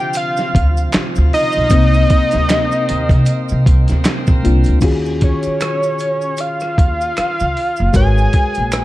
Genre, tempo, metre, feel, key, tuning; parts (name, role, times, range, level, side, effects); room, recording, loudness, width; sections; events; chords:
R&B, neo-soul; 77 BPM; 4/4; swing 58% on 16ths; A4 = 438 Hz
fat analog lead; melody; 0.0-8.8 s; Db5 to Ab5; -18 LUFS; equal
reed electric piano; accompaniment; 0.0-8.8 s; C3 to Db5; -22 LUFS; left 3 dB
bright tonewheel organ; sustained chords; 0.0-4.8 s; C3 to F4; -26 LUFS; right 1 dB; overdrive, slow rotary speaker
maracas and finger snaps; percussion; 0.1-8.8 s; -30 LUFS; right 4 dB
dusty soul sampler-style drum kit; drums; 0.2-8.8 s; crash cymbal, handclaps, hi-hat, kick drum, rim click, snare drum; -16 LUFS; equal
upright bass; bass; 0.6-8.8 s; Gb1 to C3; -15 LUFS; equal
little or no reverb; dark, warm production; -12 LUFS; side -16 dB against mid
0.0-4.8 A section; 4.8-8.8 B section
0.0 Dm7; 1.7 Cm9; 4.8 Ebm11; 7.9 Abm11